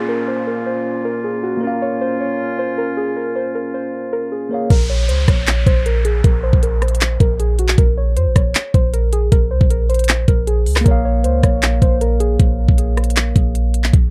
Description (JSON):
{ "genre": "hip hop, trap", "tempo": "156 BPM", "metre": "4/4", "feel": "half-time", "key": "Bb minor", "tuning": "A4 = 440 Hz", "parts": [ { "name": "muted felt-like synth keys", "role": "melody", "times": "0.0-12.4 s", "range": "Gb4 to Db5", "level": "-25 LUFS", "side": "equal", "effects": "chorus, low-pass filter, tape echo" }, { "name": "mellow tine electric piano", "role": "accompaniment", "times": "0.0-4.7, 10.8-14.0 s", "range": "Bb3 to F5", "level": "-26 LUFS", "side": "equal", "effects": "low-pass filter" }, { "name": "warm woodwind section", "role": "sustained chords", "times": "0.0-4.7 s", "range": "Bb2 to F4", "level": "-27 LUFS", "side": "equal", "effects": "none" }, { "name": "downlifter and swell", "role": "sound effects", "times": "0.0-1.6, 4.7-7.8, 14.1 s", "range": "none", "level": "-33 LUFS", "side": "equal", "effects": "none" }, { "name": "clean 808-style bass", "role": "bass", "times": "4.7-14.1 s", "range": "Bb1 to F2", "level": "-19 LUFS", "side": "equal", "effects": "none" }, { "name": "trap drum kit", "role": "drums", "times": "4.7-14.0 s", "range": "handclaps, hi-hat, kick drum, rim click", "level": "-17 LUFS", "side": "equal", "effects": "none" } ], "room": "little or no reverb", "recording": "none", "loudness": "-16 LUFS", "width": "mono", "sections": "0.0-4.7 A section; 4.7-14.1 B section", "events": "none", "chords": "0.0 Bbm" }